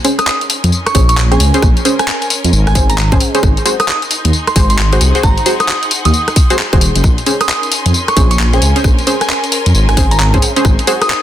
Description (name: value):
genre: UK garage, two-step garage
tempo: 133 BPM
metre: 4/4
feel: swing 63% on 16ths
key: Bb minor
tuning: A4 = 441 Hz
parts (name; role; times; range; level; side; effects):
- punchy chord stab; stabs; 0.0-11.0 s; Db4 to C5; -17 LUFS; equal; chorus, dub echo
- garage drum kit; drums; 0.0-11.2 s; handclaps, hi-hat, rim click, tambourine; -16 LUFS; left 2 dB; soft clipping on snare
- bright studio string section; texture; 0.0-11.2 s; Db4 to C6; -24 LUFS; left 2 dB; sidechain pumping
- glassy synth bell; melody; 0.2-11.2 s; Ab5 to Eb6; -19 LUFS; right 2 dB; chorus, vintage 12-bit sampler grit, dub echo
- dark detuned saw bass; bass; 0.6-10.8 s; Eb1 to F2; -12 LUFS; equal; none
- electronic kick drum; drums; 0.9-10.8 s; none; -12 LUFS; equal; none
room: little or no reverb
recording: dense, heavily limited modern master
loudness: -10 LUFS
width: side -11 dB against mid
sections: 0.0-11.2 A section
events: fade-in on string section 0.0-11.2; filter sweep on synth stab 0.0-11.2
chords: 0.0 Bbm9; 3.4 Ab7; 7.0 Bbm9; 10.6 Ab7